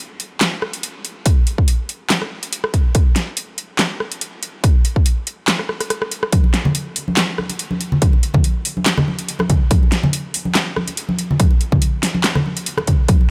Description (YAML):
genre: dubstep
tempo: 142 BPM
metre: 4/4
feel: swing 54% on 16ths, half-time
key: none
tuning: none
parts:
  - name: dubstep drum kit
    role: drums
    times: 0.2-13.2 s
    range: handclaps, hi-hat, rim click, snare drum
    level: -22 LUFS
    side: equal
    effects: none
  - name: electronic kick drum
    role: drums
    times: 1.3-13.2 s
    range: none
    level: -16 LUFS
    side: equal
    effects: none
  - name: congas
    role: percussion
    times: 6.3-13.3 s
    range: none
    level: -23 LUFS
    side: equal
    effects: dub echo
room: digital ambience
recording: none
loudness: -18 LUFS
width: mono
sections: 0.0-13.3 A section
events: break 5.5-6.3; drum fill 5.7-6.3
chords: none